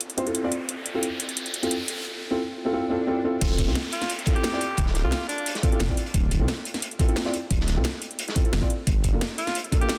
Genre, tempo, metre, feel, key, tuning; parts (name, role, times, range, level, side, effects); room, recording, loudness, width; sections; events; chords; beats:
liquid drum and bass; 176 BPM; 4/4; straight; D minor; A4 = 440 Hz
drum and bass drum kit; drums; 0.0-10.0 s; crash cymbal, hi-hat, snare drum; -33 LUFS; equal
riser, swell and downlifter; sound effects; 0.0-6.1 s; -38 LUFS; equal
felt-muted upright piano; accompaniment; 0.2-9.9 s; Bb3 to D5; -31 LUFS; equal; delay
dark detuned saw bass; bass; 3.4-9.2 s; D1 to C2; -28 LUFS; equal
crunchy breakbeat drum kit; drums; 3.4-10.0 s; hi-hat, snare drum; -37 LUFS; equal; high-pass filter on hats, high-pass filter on snare, high-pass filter on room
electronic kick drum; drums; 3.4-9.8 s; -26 LUFS; equal
edgy alto saxophone; melody; 3.9-5.5, 9.4-10.0 s; D4 to G4; -34 LUFS; equal; dub echo
light reverb, small room reverb; dense, heavily limited modern master; -26 LUFS; mono
0.0-3.4 A section; 3.4-10.0 B section
build-up 0.0-3.4; riser 0.0-2.1; swell 2.7-3.4; drop 3.4-10.0
0.0 Dm9 (rootless); 3.4 Dm9; 8.9 Gm9
0.01 0.35 | 0.69 1.03 1.37 1.71 | 2.05 2.39 2.73 3.08 | 3.42 3.76 4.10 4.44 | 4.78 5.12 5.46 5.80 | 6.14 6.48 6.83 7.17 | 7.51 7.85 8.19 8.53 | 8.87 9.21 9.55 9.89